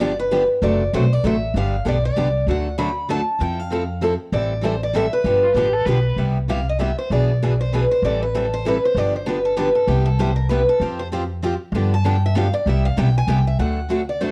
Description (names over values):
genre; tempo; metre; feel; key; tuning
acoustic string swing (jazz manouche); 194 BPM; 3/4; swing 58% on 8ths; C major; A4 = 440 Hz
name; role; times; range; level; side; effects
picked steel-string acoustic guitar; melody; 0.0-14.3 s; G4 to B5; -24 LUFS; equal; none
picked steel-string acoustic guitar; accompaniment; 0.0-14.3 s; B2 to A4; -27 LUFS; equal; none
picked steel-string acoustic guitar; accompaniment; 0.0-14.3 s; B2 to C5; -31 LUFS; equal; none
upright bass; bass; 0.0-14.3 s; F#1 to G2; -24 LUFS; equal; none
warm violin; second line; 5.4-6.2 s; F4 to B4; -30 LUFS; equal; none
room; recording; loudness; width
light reverb; worn, warbling old tape, cassette tape, warbly pitch drift; -20 LUFS; mono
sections
0.0-6.2 A section; 6.2-13.6 B section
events
steel-string acoustic guitar solo 6.2-14.3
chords
0.0 G7; 0.6 D7/F#; 1.5 G; 2.5 D; 3.4 Fmaj7; 4.3 Am7; 5.3 G7; 6.2 Cmaj7; 7.1 E7/B; 8.0 Am7; 9.0 G7; 9.9 Cmaj7; 10.8 Fsus2; 11.7 G7; 12.7 Cmaj7; 13.6 D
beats
0.00 0.31 | 0.62 0.93 1.24 | 1.55 1.86 2.16 | 2.47 2.78 3.09 | 3.40 3.71 4.02 | 4.33 4.63 4.94 | 5.25 5.56 5.87 | 6.18 6.49 6.79 | 7.10 7.41 7.72 | 8.03 8.34 8.65 | 8.96 9.27 9.57 | 9.88 10.19 10.50 | 10.81 11.12 11.43 | 11.74 12.05 12.36 | 12.66 12.97 13.28 | 13.59 13.90 14.21